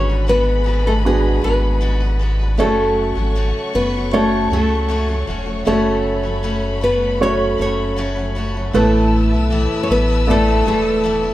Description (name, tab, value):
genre	pop ballad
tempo	78 BPM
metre	4/4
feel	straight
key	F# minor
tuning	A4 = 440 Hz
part	nylon-string guitar	melody	0.0-11.3 s	G#3 to C#5	-19 LUFS	left 1 dB	none
part	dark upright piano	accompaniment	0.0-11.3 s	G#2 to D5	-21 LUFS	right 2 dB	none
part	warm studio string section	sustained chords	0.0-11.3 s	G#4 to E6	-28 LUFS	left 3 dB	none
part	picked steel-string acoustic guitar	arpeggios	0.0-11.3 s	F#2 to B4	-27 LUFS	left 3 dB	none
part	warm sub bass	bass	0.0-11.3 s	E1 to C#2	-20 LUFS	equal	none
room	moderate large studio reverb, RT60 0.8 s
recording	band playing live in one room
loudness	-15 LUFS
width	side -15 dB against mid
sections	0.0-11.3 A section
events	none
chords	0.0 G#m7b5; 2.6 F#m; 8.7 Asus2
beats	0.28 1.05 1.82 | 2.59 3.36 4.13 4.90 | 5.67 6.43 7.20 7.97 | 8.74 9.51 10.28 11.05